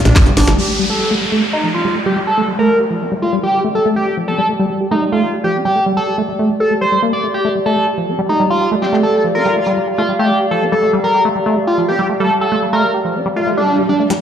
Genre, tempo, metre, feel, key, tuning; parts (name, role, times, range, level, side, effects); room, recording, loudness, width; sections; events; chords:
psychedelic trance; 142 BPM; 4/4; straight; A4 = 435 Hz
techno drum kit; drums; 0.0-0.6, 14.1-14.2 s; handclaps, hi-hat, snare drum; -18 LUFS; equal; low-pass filter on hats, low-pass filter on snare, low-pass filter on room
warbly tape-like pad; texture; 0.0-14.2 s; G4 to G5; -22 LUFS; right 1 dB; chorus, built-in reverb, sidechain pumping
overdriven synth lead; melody; 0.1-14.0 s; D4 to D5; -16 LUFS; equal; distortion, phaser, sidechain pumping, tape echo
liquid acid bass; riff; 0.1-14.1 s; F3 to G4; -18 LUFS; moving between left 5 dB and right 4 dB; chorus, auto-pan, sidechain pumping, tape echo
fat analog bass; bass; 0.1-0.5 s; G1 to Bb1; -12 LUFS; equal
downlifter, swell and riser; sound effects; 0.6-4.0, 13.3-14.2 s; -22 LUFS; equal
metallic wobble bass; second line; 8.8-9.8 s; C4 to F4; -28 LUFS; equal; lush chorus, sidechain pumping, high-pass filter, tape echo
moderate plate reverb, RT60 2.3 s; played on a big sound system in a bare room, large studio reverb; -13 LUFS; side -8 dB against mid
0.6-14.1 A section
drum fill 0.0-0.6; swell 13.3-14.1
0.0 G5